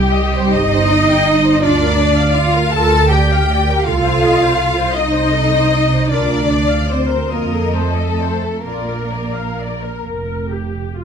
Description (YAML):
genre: classical, slow romantic movement for string orchestra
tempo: 42-56 BPM (dotted quarters)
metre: 6/8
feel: rubato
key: Bb major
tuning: A4 = 440 Hz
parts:
  - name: warm symphonic violin section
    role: melody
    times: 0.0-10.0 s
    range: G4 to A5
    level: -21 LUFS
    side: left 7 dB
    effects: none
  - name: rich studio violin section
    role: second line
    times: 0.0-10.0 s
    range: G4 to A5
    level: -20 LUFS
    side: left 3 dB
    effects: none
  - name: warm symphonic viola section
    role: accompaniment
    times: 0.0-11.0 s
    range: F4 to G5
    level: -23 LUFS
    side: equal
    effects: none
  - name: rich symphonic cello section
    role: bass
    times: 0.0-10.0 s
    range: G3 to A4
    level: -18 LUFS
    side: right 2 dB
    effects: none
  - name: warm symphonic double bass section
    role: bass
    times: 0.0-11.0 s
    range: F1 to F2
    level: -18 LUFS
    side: right 3 dB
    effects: none
room: light reverb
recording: close, detailed microphones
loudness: -13 LUFS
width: side -7 dB against mid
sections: 0.0-11.0 A section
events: none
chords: 0.0 Cm; 1.6 Bb/D; 3.9 Adim/C; 6.1 Bb/D; 7.3 F7; 8.6 Bb